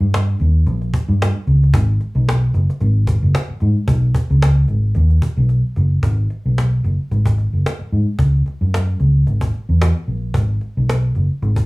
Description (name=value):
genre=straight-eighth soul blues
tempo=112 BPM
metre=4/4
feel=swing 54% on 16ths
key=G# minor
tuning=A4 = 444 Hz
part: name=vintage muted fingered electric bass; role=bass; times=0.0-11.7 s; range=F#1 to G#2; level=-14 LUFS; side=equal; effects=none
part: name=cajon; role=drums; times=0.1-11.7 s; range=none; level=-21 LUFS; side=equal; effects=none
room=little or no reverb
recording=small room ambience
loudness=-14 LUFS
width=side -23 dB against mid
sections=0.0-6.0 A section; 6.0-11.7 B section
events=break 5.5-6.0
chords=none